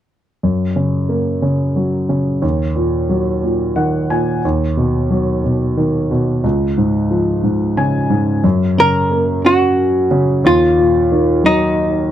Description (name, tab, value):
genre	pop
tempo	60 BPM (dotted quarters)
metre	6/8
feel	straight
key	F# major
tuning	A4 = 441 Hz
part	warm concert grand piano	accompaniment	0.4-12.1 s	C#2 to G#5	-14 LUFS	equal	none
part	archtop guitar, miked and amplified	melody	8.8-12.1 s	D#4 to A#4	-13 LUFS	equal	none
room	light reverb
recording	dry, close 1970s-style studio recording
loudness	-13 LUFS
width	side -11 dB against mid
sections	0.4-8.4 A section; 8.4-12.1 B section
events	grand piano fill 3.4-4.4, 7.4-8.4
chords	0.4 F#; 2.4 D#m; 4.4 B/D#; 6.4 C#; 8.4 F#; 10.4 D#m